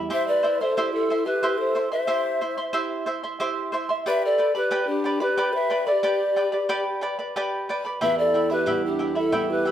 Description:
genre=andean folk, Andean ensemble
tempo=91 BPM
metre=3/4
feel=straight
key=unclear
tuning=A4 = 440 Hz
part: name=charango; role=accompaniment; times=0.0-9.7 s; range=E4 to C6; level=-26 LUFS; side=right 2 dB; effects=none
part: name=flamenco guitar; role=accompaniment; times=0.0-0.1, 8.0-9.7 s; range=E2 to G5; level=-29 LUFS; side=right 6 dB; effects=none
part: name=mellow hollow polished pan flute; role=melody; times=0.1-9.7 s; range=G4 to E5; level=-24 LUFS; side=equal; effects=none
part: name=breathy mellow large quena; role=second line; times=0.1-9.7 s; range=D4 to C5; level=-28 LUFS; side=left 4 dB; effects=none
room=moderate recital hall reverb, RT60 1.7 s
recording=none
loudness=-21 LUFS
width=side -10 dB against mid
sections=0.1-9.7 A section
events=none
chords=0.1 C; 4.1 G; 8.0 Em

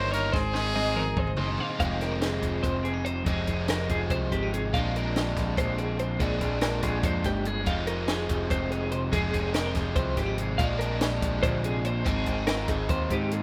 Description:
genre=math rock and midwest emo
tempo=287 BPM (eighths)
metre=7/8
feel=straight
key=unclear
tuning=A4 = 443 Hz
part: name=brilliant trumpet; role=melody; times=0.0-1.3 s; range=Ab4 to C5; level=-32 LUFS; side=equal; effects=slapback echo
part: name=clean electric guitar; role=accompaniment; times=0.0-13.4 s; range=Eb2 to G4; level=-37 LUFS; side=equal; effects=none
part: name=twelve-string electric guitar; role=arpeggios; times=0.0-13.4 s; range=G4 to F5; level=-34 LUFS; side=equal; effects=tremolo
part: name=biting overdriven guitar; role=riff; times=0.0-13.4 s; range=F2 to Db5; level=-34 LUFS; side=equal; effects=none
part: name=growling picked electric bass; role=bass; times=0.0-13.4 s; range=F1 to Ab2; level=-33 LUFS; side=equal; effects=overdrive
part: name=compact cocktail drum kit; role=drums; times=0.1-13.4 s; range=hi-hat, kick drum, snare drum, toms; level=-33 LUFS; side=equal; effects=none
room=small room reverb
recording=rough home demo mix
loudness=-27 LUFS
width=mono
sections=0.0-1.8 A section; 1.8-13.4 B section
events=drum fill 0.3-1.8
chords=0.3 Abadd9; 1.8 Fm7; 4.7 Bb13; 7.7 Fm7; 10.6 Bb13; 12.1 Ab69

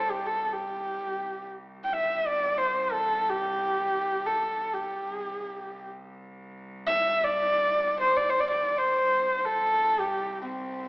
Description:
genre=mongolian traditional, Mongolian folk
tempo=free time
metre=none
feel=none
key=C gong mode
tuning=A4 = 438 Hz
part: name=warm horsehead fiddle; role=melody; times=0.0-10.9 s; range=C4 to G5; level=-25 LUFS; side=equal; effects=none
part: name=clear cello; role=drone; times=0.0-10.9 s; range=C2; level=-45 LUFS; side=equal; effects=none
room=wet recital hall reverb, RT60 1.8 s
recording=AM radio sound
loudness=-24 LUFS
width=side -22 dB against mid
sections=0.0-10.9 A section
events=none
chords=none

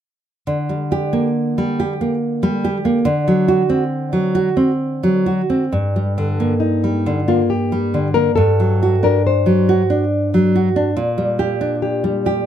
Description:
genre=romantic duo for nylon-string guitar and classical guitar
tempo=69 BPM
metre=3/4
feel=rubato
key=G minor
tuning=A4 = 444 Hz
part: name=nylon-string guitar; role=accompaniment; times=0.5-12.5 s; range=G2 to G4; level=-16 LUFS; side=right 1 dB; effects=none
part: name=nylon-string guitar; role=melody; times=6.6-12.4 s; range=Eb4 to C5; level=-20 LUFS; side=left 5 dB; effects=none
room=light reverb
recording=close, detailed microphones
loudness=-15 LUFS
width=side -10 dB against mid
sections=0.5-5.7 A section; 5.7-12.5 B section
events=none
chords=0.5 Gm/D; 3.1 D7; 5.7 Gm; 8.4 D7/G; 11.0 Gm/Bb

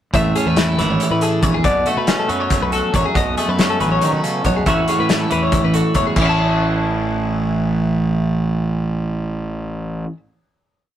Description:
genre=math rock and midwest emo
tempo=279 BPM (eighths)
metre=7/8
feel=straight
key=A major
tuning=A4 = 439 Hz
part: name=twelve-string electric guitar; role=accompaniment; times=0.1-10.2 s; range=E2 to G#4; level=-20 LUFS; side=right 3 dB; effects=none
part: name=twelve-string electric guitar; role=arpeggios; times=0.1-10.2 s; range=F#4 to A5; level=-22 LUFS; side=left 4 dB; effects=none
part: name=fuzz fingered electric bass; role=bass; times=0.1-10.0 s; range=F#1 to B2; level=-22 LUFS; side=equal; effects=overdrive
part: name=loose indie drum kit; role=drums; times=0.1-6.3 s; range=crash cymbal, hi-hat, kick drum, snare drum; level=-21 LUFS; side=left 1 dB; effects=none
room=moderate studio reverb, RT60 0.6 s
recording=rough rehearsal-room recording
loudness=-15 LUFS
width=side -10 dB against mid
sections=0.1-6.2 A section; 6.2-9.2 final chord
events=none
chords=0.1 Amaj7; 1.7 Bm9; 3.2 B13; 4.7 A6

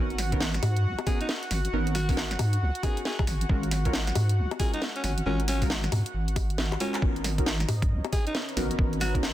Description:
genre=UK garage, two-step garage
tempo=136 BPM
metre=4/4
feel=swing 63% on 16ths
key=G# dorian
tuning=A4 = 437 Hz
part: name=warm analog pad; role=sustained chords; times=0.0-9.3 s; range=D#4 to F#5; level=-38 LUFS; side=left 1 dB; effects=chorus, sidechain pumping
part: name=deep mellow chord stab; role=stabs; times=0.0-9.2 s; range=G#3 to A#4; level=-34 LUFS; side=equal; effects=chorus, ping-pong delay
part: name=deep soft wobble bass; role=bass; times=0.0-9.3 s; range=G#1 to G#2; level=-27 LUFS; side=equal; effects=chorus
part: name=garage drum kit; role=drums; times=0.1-9.3 s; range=bongos, handclaps, hi-hat, snare drum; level=-31 LUFS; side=left 1 dB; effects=none
part: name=electronic kick drum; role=drums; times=0.3-9.2 s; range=none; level=-27 LUFS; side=equal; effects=none
part: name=growling alto saxophone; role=melody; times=1.1-9.2 s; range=C#4 to G#4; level=-36 LUFS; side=equal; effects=ping-pong delay
part: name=granular cloud pad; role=texture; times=8.0-9.3 s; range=C#4 to A#5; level=-40 LUFS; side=left 1 dB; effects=built-in reverb, sidechain pumping
room=light reverb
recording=dense, heavily limited modern master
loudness=-24 LUFS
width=side -13 dB against mid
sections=0.0-7.0 A section; 7.0-9.3 A section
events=drop 0.0-7.0, 7.0-9.3; kick drops out 6.6-7.0; drum fill 6.7-7.0; band accent 6.9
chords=0.0 G#m11; 3.5 F#maj7/G#; 7.0 G#m11

